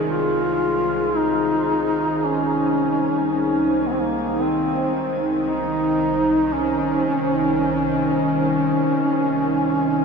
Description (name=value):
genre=dark ambient drone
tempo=free time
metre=none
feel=none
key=unclear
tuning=A4 = 443 Hz
part: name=dark analog pad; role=sustained chords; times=0.0-10.0 s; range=Eb4 to C5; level=-23 LUFS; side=right 1 dB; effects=chorus, shimmer reverb
part: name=bowed-like drone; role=drone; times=0.0-10.0 s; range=C2 to Eb3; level=-26 LUFS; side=equal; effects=built-in reverb
part: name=mellow duduk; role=melody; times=0.1-10.0 s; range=Bb3 to F4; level=-21 LUFS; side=equal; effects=shimmer reverb, ping-pong delay
room=wet huge ambient reverb, RT60 7.7 s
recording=dreamy mix soaked in reverb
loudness=-18 LUFS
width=side -5 dB against mid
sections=0.0-10.0 A section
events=none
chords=0.0 Bbmadd9/C